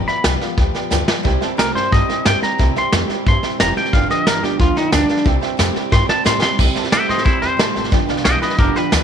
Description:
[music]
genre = rockabilly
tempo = 180 BPM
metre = 4/4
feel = straight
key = C major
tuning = A4 = 440 Hz
[part]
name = twangy electric guitar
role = melody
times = 0.0-9.0 s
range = D4 to C6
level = -20 LUFS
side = left 1 dB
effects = tape echo
[part]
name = picked steel-string acoustic guitar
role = accompaniment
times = 0.0-9.0 s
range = G2 to G4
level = -25 LUFS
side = left 11 dB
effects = none
[part]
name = upright bass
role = bass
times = 0.0-9.0 s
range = F1 to A2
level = -22 LUFS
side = equal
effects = none
[part]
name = tack piano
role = accompaniment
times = 0.1-9.0 s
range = B4 to A5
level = -27 LUFS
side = right 11 dB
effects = none
[part]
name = vintage brush drum kit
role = drums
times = 0.1-9.0 s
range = crash cymbal, hi-hat, kick drum, snare drum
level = -18 LUFS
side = equal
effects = none
[part]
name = electric guitar through a small old amp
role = riff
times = 1.2-9.0 s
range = G2 to A3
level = -24 LUFS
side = right 14 dB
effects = none
[sound]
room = light reverb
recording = 1960s-style stereo with parts hard left and right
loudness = -14 LUFS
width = side -8 dB against mid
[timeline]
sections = 0.0-6.6 A section; 6.6-9.0 B section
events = drum fill 0.9-1.3, 5.9-6.6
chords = 0.0 G7; 1.3 C; 3.9 G7; 5.3 C; 7.9 G7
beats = 0.24 0.58 0.92 | 1.25 1.59 1.92 2.26 | 2.59 2.92 3.26 3.59 | 3.93 4.26 4.59 4.93 | 5.26 5.60 5.93 6.26 | 6.59 6.93 7.26 7.59 | 7.92 8.26 8.59 8.92

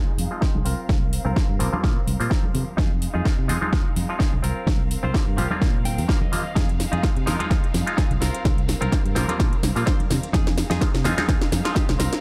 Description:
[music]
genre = filtered disco house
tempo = 127 BPM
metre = 4/4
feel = swing 55% on 16ths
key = F minor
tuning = A4 = 440 Hz
[part]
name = clav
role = accompaniment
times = 0.0-12.0 s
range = F3 to F4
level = -32 LUFS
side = equal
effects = phaser, sidechain pumping, low-pass filter
[part]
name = rich studio string section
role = sustained chords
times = 0.0-12.2 s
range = Ab3 to F5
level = -38 LUFS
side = equal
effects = sidechain pumping, low-pass filter
[part]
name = fingered electric bass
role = bass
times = 0.0-12.1 s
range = C2 to C3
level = -28 LUFS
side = equal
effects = sidechain pumping, low-pass filter
[part]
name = tambourine and congas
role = percussion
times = 0.1-12.2 s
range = none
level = -35 LUFS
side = equal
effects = none
[part]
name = house drum kit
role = drums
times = 0.2-12.2 s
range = hi-hat, snare drum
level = -32 LUFS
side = equal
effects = overdrive
[part]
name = direct-recorded clean electric guitar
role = riff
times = 0.4-12.2 s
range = C4 to G5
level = -34 LUFS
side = equal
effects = sidechain pumping, low-pass filter
[part]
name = electronic kick drum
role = drums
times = 0.4-11.9 s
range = none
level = -24 LUFS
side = equal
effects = overdrive
[sound]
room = digital ambience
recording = none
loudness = -22 LUFS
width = mono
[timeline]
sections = 0.0-12.2 A section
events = build-up 0.0-12.2; drum fill 0.0-12.2; filter sweep 0.0-12.2; clean electric guitar fill 5.6-6.6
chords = 0.0 Fm7; 0.7 C7sus4; 2.8 Fm7; 4.4 C7sus4; 6.6 Fm7; 8.2 C7sus4; 10.3 Fm7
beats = 0.42 | 0.89 1.37 1.84 2.31 | 2.78 3.26 3.73 4.20 | 4.67 5.14 5.62 6.09 | 6.56 7.04 7.51 7.98 | 8.45 8.93 9.40 9.87 | 10.34 10.81 11.29 11.76

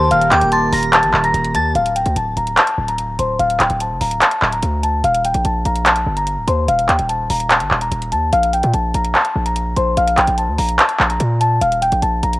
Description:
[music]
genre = hip hop, trap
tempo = 146 BPM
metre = 4/4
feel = half-time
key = D phrygian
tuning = A4 = 440 Hz
[part]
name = celesta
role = melody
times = 0.0-12.4 s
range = C5 to Bb6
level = -17 LUFS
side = left 1 dB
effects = low-pass filter, cassette tape, tape echo
[part]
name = glassy synth bell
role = second line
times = 0.0-1.7 s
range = A5 to D6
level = -25 LUFS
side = equal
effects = chorus, phaser, tape echo
[part]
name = mellow tine electric piano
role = accompaniment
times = 0.0-1.8 s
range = Eb3 to Bb4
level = -22 LUFS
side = right 2 dB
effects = slow stereo tremolo
[part]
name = airy breathy pad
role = sustained chords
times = 0.0-1.7 s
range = Eb3 to Bb4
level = -30 LUFS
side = right 1 dB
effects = none
[part]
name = hard-hitting 808-style bass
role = bass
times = 0.0-12.4 s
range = D1 to Bb2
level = -20 LUFS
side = equal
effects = none
[part]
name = trap drum kit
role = drums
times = 0.1-12.4 s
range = handclaps, hi-hat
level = -17 LUFS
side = equal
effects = none
[sound]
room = digital ambience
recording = home recording on cassette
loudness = -14 LUFS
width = side -18 dB against mid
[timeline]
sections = 0.0-1.8 A section; 1.8-12.4 B section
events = none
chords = 0.0 Eb; 1.8 Dm; 5.0 Eb; 8.3 Bb5; 11.6 Eb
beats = | 0.11 0.52 0.93 1.34 | 1.75 2.16 2.57 2.98 | 3.40 3.81 4.22 4.63 | 5.04 5.45 5.86 6.27 | 6.68 7.09 7.50 7.92 | 8.33 8.74 9.15 9.56 | 9.97 10.38 10.79 11.20 | 11.62 12.03

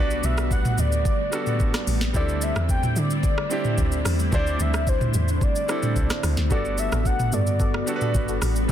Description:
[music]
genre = amapiano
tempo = 110 BPM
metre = 4/4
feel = straight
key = G major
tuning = A4 = 440 Hz
[part]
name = warm velvety synth lead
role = melody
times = 0.0-8.4 s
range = C5 to G5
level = -29 LUFS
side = left 1 dB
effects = chorus, ping-pong delay
[part]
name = bright concert grand piano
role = accompaniment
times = 0.0-8.7 s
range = G3 to C5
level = -31 LUFS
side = right 2 dB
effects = none
[part]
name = soft string machine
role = sustained chords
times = 0.0-8.7 s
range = D3 to F#4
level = -30 LUFS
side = equal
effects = ensemble chorus, sidechain pumping
[part]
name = deep log drum bass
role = bass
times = 0.0-8.7 s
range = G1 to D3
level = -25 LUFS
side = equal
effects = none
[part]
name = smooth R&B drum kit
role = drums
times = 0.1-8.7 s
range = hi-hat, kick drum, rim click, shaker, snare drum, toms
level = -24 LUFS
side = equal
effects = soft clipping on snare
[part]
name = deep mellow chord stab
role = stabs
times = 6.5-8.7 s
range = B3 to A4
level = -32 LUFS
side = left 1 dB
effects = chorus, ping-pong delay
[sound]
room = little or no reverb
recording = dense, heavily limited modern master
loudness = -20 LUFS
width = side -10 dB against mid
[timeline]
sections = 0.0-8.7 A section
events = none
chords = 0.0 Gmaj9/B; 2.1 D9sus4; 6.5 Gmaj9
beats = 0.51 1.05 1.60 | 2.14 2.69 3.23 3.78 | 4.33 4.87 5.42 5.96 | 6.51 7.05 7.60 8.14 | 8.69

